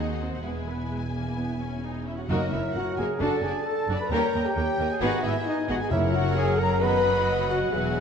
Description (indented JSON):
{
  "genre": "cinematic",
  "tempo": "132 BPM",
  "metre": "4/4",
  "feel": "straight",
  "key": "F# mixolydian",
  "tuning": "A4 = 439 Hz",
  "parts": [
    { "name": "warm symphonic violin section", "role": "melody", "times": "0.0-8.0 s", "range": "D#5 to B5", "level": "-37 LUFS", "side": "left 2 dB", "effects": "none" },
    { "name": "rich symphonic violin section", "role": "second line", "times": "0.0-8.0 s", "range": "D#4 to G5", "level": "-36 LUFS", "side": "left 3 dB", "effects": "none" },
    { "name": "clear symphonic viola section", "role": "accompaniment", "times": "0.0-8.0 s", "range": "F#3 to B#4", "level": "-34 LUFS", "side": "equal", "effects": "none" },
    { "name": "rich chamber cello section", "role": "bass", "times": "0.0-8.0 s", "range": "D#2 to G#2", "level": "-33 LUFS", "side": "right 1 dB", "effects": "none" },
    { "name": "rich symphonic double bass section", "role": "bass", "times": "0.0-8.0 s", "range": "E1 to D#2", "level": "-32 LUFS", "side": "right 3 dB", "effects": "none" },
    { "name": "clear trombone section", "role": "sustained chords", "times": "0.4-7.9 s", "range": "C#3 to D4", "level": "-37 LUFS", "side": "right 3 dB", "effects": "none" },
    { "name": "mellow hollow large flute ensemble", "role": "second line", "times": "2.1-8.0 s", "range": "D#5 to B5", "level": "-35 LUFS", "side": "left 1 dB", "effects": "none" },
    { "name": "dark French horn section", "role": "sustained chords", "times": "2.1-8.0 s", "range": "D#4 to B4", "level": "-28 LUFS", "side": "left 3 dB", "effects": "none" },
    { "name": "mellow trumpet", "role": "stabs", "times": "2.1-8.0 s", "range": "D#4 to B4", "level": "-32 LUFS", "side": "right 2 dB", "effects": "none" },
    { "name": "mellow clarinet", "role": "second line", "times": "2.3-8.0 s", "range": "B4 to E5", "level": "-37 LUFS", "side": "left 2 dB", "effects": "none" },
    { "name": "warm cor anglais", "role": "second line", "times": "2.3-8.0 s", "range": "A#4 to A5", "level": "-35 LUFS", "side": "right 1 dB", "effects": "none" },
    { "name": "timpani", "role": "percussion", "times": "2.3-2.9, 5.9-6.5 s", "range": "F#2", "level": "-32 LUFS", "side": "left 2 dB", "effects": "none" }
  ],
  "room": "wet scoring stage reverb, RT60 2.0 s",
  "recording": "dark, warm production",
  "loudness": "-23 LUFS",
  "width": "side -7 dB against mid",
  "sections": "0.0-2.3 A section; 2.3-8.0 A section",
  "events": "none",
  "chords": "0.4 E; 2.3 F#; 3.2 D/F#; 4.1 D#7; 5.0 G#m; 5.9 F#; 6.8 B/F#",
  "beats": "| 0.44 0.91 1.37 1.83 | 2.30 2.76 3.21 3.67 | 4.12 4.58 5.03 5.47 | 5.92 6.37 6.82 7.27 | 7.73"
}